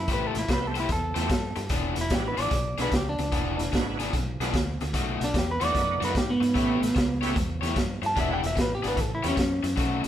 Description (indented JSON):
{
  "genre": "electric blues shuffle",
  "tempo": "149 BPM",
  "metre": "4/4",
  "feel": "swing 66% on 8ths",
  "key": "unclear",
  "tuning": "A4 = 438 Hz",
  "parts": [
    { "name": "electric guitar at the edge of break-up", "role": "melody", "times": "0.0-10.1 s", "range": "B3 to A5", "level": "-28 LUFS", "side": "equal", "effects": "none" },
    { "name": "fingered electric bass", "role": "bass", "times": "0.0-10.1 s", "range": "E1 to G#2", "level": "-32 LUFS", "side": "equal", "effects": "none" },
    { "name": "raw garage guitar", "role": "riff", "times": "0.1-10.1 s", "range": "B2 to C#5", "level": "-32 LUFS", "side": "left 4 dB", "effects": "overdrive" },
    { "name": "raw garage drum kit", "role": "drums", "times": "0.1-10.1 s", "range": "hi-hat, kick drum, snare drum", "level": "-28 LUFS", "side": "equal", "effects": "none" },
    { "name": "bright tonewheel organ", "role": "accompaniment", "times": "0.5-9.4 s", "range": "G#3 to G4", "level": "-35 LUFS", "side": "right 6 dB", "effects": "slow rotary speaker, overdrive, chorus vibrato" }
  ],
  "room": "moderate stone room reverb, RT60 1.0 s",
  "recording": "band playing live in one room",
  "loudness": "-24 LUFS",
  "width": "side -11 dB against mid",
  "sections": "0.0-10.1 A section",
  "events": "clean electric guitar solo 0.0-10.1",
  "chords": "0.1 Am7; 1.7 E7; 4.9 B7; 6.6 A7; 8.2 E7; 9.0 A7"
}